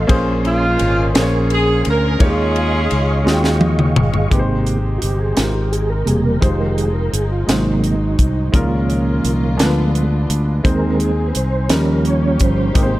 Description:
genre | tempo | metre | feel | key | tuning
slow gospel | 57 BPM (dotted quarters) | 6/8 | straight | Ab major | A4 = 440 Hz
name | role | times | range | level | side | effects
warm saxophone section | melody | 0.0-3.6 s | Ab3 to Bb4 | -20 LUFS | right 1 dB | tape echo
warm concert grand piano | accompaniment | 0.0-13.0 s | Ab2 to G5 | -22 LUFS | equal | none
mellow tonewheel organ | sustained chords | 0.0-13.0 s | C3 to Db6 | -21 LUFS | right 2 dB | slow rotary speaker, chorus vibrato
fingered electric bass | bass | 0.0-13.0 s | Fb1 to Eb2 | -18 LUFS | equal | none
tight funk drum kit | drums | 0.1-12.9 s | hi-hat, kick drum, ride cymbal, snare drum, toms | -18 LUFS | equal | none
dark studio string section | sustained chords | 4.3-13.0 s | Eb3 to C5 | -30 LUFS | equal | none
room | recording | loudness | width
light reverb, small room ambience | none | -14 LUFS | side -16 dB against mid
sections
0.0-4.3 A section; 4.3-13.0 B section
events
drum fill 3.3-4.3; tonewheel organ solo 4.3-13.0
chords
0.1 Bbm9; 2.2 Eb9sus4; 4.3 Abmaj7; 6.4 Fm7; 7.5 Ab7; 8.5 Db6; 9.6 Ddim7; 10.6 Ab/Eb; 11.7 Eb7

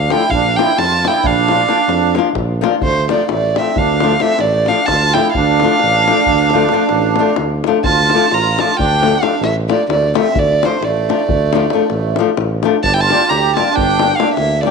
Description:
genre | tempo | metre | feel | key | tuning
balkan folk, Balkan wedding band | 264 BPM (eighths) | 11/8 | straight | D minor | A4 = 440 Hz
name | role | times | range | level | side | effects
dark violin | melody | 0.0-14.7 s | C5 to Bb5 | -16 LUFS | right 1 dB | none
accordion | second line | 0.0-14.7 s | A3 to G4 | -19 LUFS | right 12 dB | light tremolo tuning
mellow tuba | bass | 0.0-14.7 s | G1 to F2 | -20 LUFS | right 2 dB | none
flamenco guitar | accompaniment | 0.1-14.7 s | F3 to G4 | -19 LUFS | left 9 dB | none
davul | percussion | 0.1-14.7 s | none | -21 LUFS | left 6 dB | none
room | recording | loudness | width
moderate echo chamber reverb, RT60 2.1 s | 1960s-style stereo with parts hard left and right | -12 LUFS | side -5 dB against mid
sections
0.0-7.9 A section; 7.9-14.7 B section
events
none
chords
0.3 Bb; 2.8 Dm; 12.8 Gm

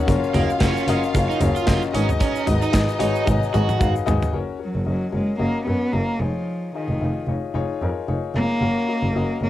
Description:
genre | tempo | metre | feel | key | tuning
piano-driven pop | 112 BPM | 4/4 | swing 56% on 16ths | F# major | A4 = 441 Hz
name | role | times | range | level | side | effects
warm studio violin section | second line | 0.0-4.3 s | D#4 to E#5 | -28 LUFS | right 1 dB | cassette tape
clear upright piano | accompaniment | 0.0-9.5 s | G#2 to E#5 | -26 LUFS | left 8 dB | cassette tape
rich double bass | bass | 0.1-9.5 s | E#1 to F#2 | -23 LUFS | equal | none
modern studio drum kit | drums | 0.1-4.3 s | hi-hat, kick drum, snare drum, toms | -23 LUFS | right 1 dB | cassette tape
tube shaker | percussion | 0.1-4.3 s | none | -45 LUFS | left 9 dB | none
overdriven electric guitar | riff | 0.3-3.9 s | A#3 to F#4 | -26 LUFS | right 8 dB | cassette tape
rich cello | melody | 4.6-9.5 s | D#3 to B3 | -24 LUFS | equal | cassette tape
room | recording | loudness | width
light reverb | home recording on cassette | -19 LUFS | side -13 dB against mid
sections
0.0-4.3 A section; 4.3-9.5 B section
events
drum fill 3.3-4.3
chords
0.1 F#maj7; 1.9 G#m7; 4.3 F#; 6.2 C#add9/E#; 8.6 F#

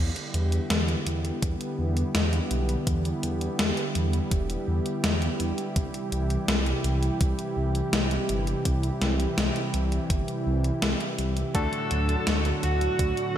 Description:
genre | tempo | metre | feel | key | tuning
synthwave | 83 BPM | 4/4 | straight | E minor | A4 = 439 Hz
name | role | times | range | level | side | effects
warm analog pad | sustained chords | 0.0-13.4 s | A2 to G4 | -30 LUFS | right 1 dB | chorus, sidechain pumping
dark detuned saw bass | bass | 0.0-13.1 s | E1 to E2 | -27 LUFS | equal | none
gated 80s digital drum machine | drums | 0.2-13.3 s | hi-hat, snare drum | -29 LUFS | left 2 dB | gated reverb, gated reverb snare
electronic kick drum | drums | 1.4-13.1 s | none | -26 LUFS | equal | none
dark smooth lead guitar | melody | 11.5-13.4 s | F#4 to A4 | -29 LUFS | right 2 dB | overdrive, vintage 12-bit sampler grit
clear electric grand piano | stabs | 11.5-13.4 s | D3 to A4 | -32 LUFS | right 1 dB | none
room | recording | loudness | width
light reverb, digital ambience | bright 1980s-style digital production | -24 LUFS | side -10 dB against mid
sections
0.0-13.4 A section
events
none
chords
0.0 Em7; 5.8 C; 11.5 D

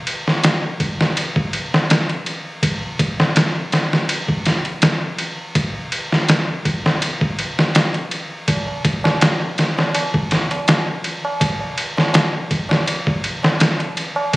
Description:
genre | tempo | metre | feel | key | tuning
trip hop | 82 BPM | 4/4 | swing 53% on 16ths | none | none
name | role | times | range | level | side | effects
trip hop sampler-style drum kit | drums | 0.1-14.4 s | kick drum, ride cymbal, snare drum | -17 LUFS | equal | none
tabla | percussion | 8.5-14.4 s | none | -26 LUFS | right 2 dB | none
room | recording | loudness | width
light reverb | recorded on a phone in the room, club reverb | -16 LUFS | side -20 dB against mid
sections
0.0-14.4 A section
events
none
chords
none

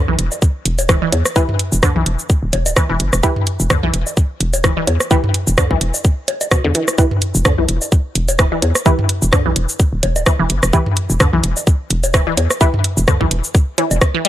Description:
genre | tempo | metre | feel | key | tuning
minimal techno | 128 BPM | 4/4 | swing 55% on 16ths | E minor | A4 = 440 Hz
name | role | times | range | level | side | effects
resonant blip pluck | riff | 0.1-14.3 s | B2 to G3 | -21 LUFS | equal | phaser, cassette tape, sidechain pumping, ping-pong delay
hollow knocking FM bass | bass | 0.1-14.0 s | D1 to E2 | -18 LUFS | equal | sidechain pumping
garage drum kit | drums | 0.2-14.3 s | cabasa, hi-hat, rim click | -18 LUFS | right 1 dB | overdrive
electronic woodblock, bongos and toms | percussion | 0.3-14.0 s | none | -22 LUFS | equal | overdrive
electronic kick drum | drums | 0.4-14.1 s | none | -14 LUFS | equal | none
filtered dub chord stab | stabs | 1.4-12.7 s | E4 to B4 | -21 LUFS | equal | chorus, vintage 12-bit sampler grit, ping-pong delay
room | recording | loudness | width
digital ambience | lossy compression artefacts | -13 LUFS | side -13 dB against mid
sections
0.0-14.3 A section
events
none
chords
0.0 E5

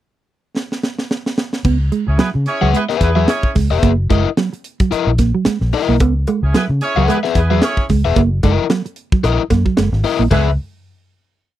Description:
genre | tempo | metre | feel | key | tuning
funk | 111 BPM | 4/4 | swing 56% on 16ths | C# dorian | A4 = 442 Hz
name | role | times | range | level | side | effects
crisp fusion drum kit | drums | 0.6-10.4 s | crash cymbal, hi-hat, kick drum, snare drum, toms | -18 LUFS | equal | none
mellow electric guitar | riff | 1.6-10.5 s | F#3 to B3 | -18 LUFS | right 6 dB | none
vintage muted fingered electric bass | bass | 1.6-10.6 s | E1 to C#3 | -16 LUFS | equal | none
clear horn section | second line | 2.1-10.5 s | G#3 to C#5 | -21 LUFS | right 2 dB | none
overdriven semi-hollow guitar | accompaniment | 2.6-10.5 s | E4 to F#5 | -17 LUFS | left 9 dB | none
cowbell | percussion | 6.0-10.6 s | none | -26 LUFS | left 2 dB | none
room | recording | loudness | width
little or no reverb | dry, close 1970s-style studio recording | -14 LUFS | side -13 dB against mid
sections
0.0-1.6 pickup bar; 1.6-10.3 groove; 10.3-11.6 final chord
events
drum fill 0.6-1.6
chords
0.0 N.C.; 1.6 C#m7; 3.8 F#13; 6.0 C#m7; 8.2 F#13; 10.3 C#m7

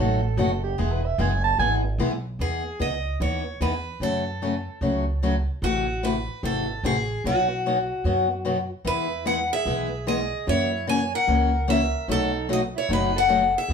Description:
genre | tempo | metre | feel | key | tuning
acoustic string swing (jazz manouche) | 149 BPM | 4/4 | swing 63% on 8ths | E major | A4 = 441 Hz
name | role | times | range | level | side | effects
breathy soprano saxophone | second line | 0.0-1.7, 8.9-13.7 s | D#4 to A5 | -29 LUFS | right 6 dB | none
picked steel-string acoustic guitar | accompaniment | 0.0-13.7 s | B2 to G#4 | -26 LUFS | left 3 dB | none
upright bass | bass | 0.0-13.7 s | E1 to F#2 | -28 LUFS | right 1 dB | none
picked steel-string acoustic guitar | melody | 2.4-13.7 s | F#4 to G#5 | -26 LUFS | left 1 dB | none
room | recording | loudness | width
wet studio reverb, RT60 0.6 s | band playing live in one room | -22 LUFS | side -6 dB against mid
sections
0.0-2.4 A section; 2.4-13.7 B section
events
soprano saxophone solo 0.0-2.4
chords
0.0 B7; 0.8 E; 2.4 Emaj7; 4.0 F#m; 5.6 Am6; 7.2 B; 8.9 E; 10.5 F#7; 12.1 B7

